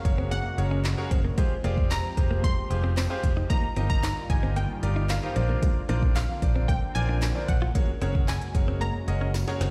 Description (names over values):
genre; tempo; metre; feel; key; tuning
dance-pop; 113 BPM; 4/4; straight; unclear; A4 = 440 Hz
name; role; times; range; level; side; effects
glassy wavetable pluck; melody; 0.0-9.6 s; F5 to C6; -38 LUFS; equal; chorus, digital delay
bright concert grand piano; accompaniment; 0.0-9.7 s; C4 to Eb5; -36 LUFS; equal; none
sweeping resonant pad; sustained chords; 0.0-9.7 s; Db3 to G4; -40 LUFS; equal; chorus, sidechain pumping
direct-recorded clean electric guitar; riff; 0.1-9.7 s; Ab3 to F4; -39 LUFS; equal; analog chorus
vintage muted fingered electric bass; bass; 0.1-9.7 s; F1 to Bb1; -29 LUFS; equal; sidechain pumping
deep house drum kit; drums; 0.1-9.7 s; handclaps, hi-hat, kick drum, snare drum; -28 LUFS; equal; none
tambourine; percussion; 1.9-9.5 s; none; -47 LUFS; equal; none
room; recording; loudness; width
digital ambience; played on a big sound system in a bare room, stone room reverb; -26 LUFS; mono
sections
0.0-9.7 A section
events
drum fill 9.3-9.7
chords
0.0 Gbadd9; 1.4 Fmadd9; 3.5 Ebadd9/G; 5.4 Bbadd9; 7.8 Gbadd9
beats
0.32 0.85 | 1.38 1.91 2.44 2.97 | 3.50 4.03 4.56 5.09 | 5.63 6.16 6.69 7.22 | 7.75 8.28 8.81 9.34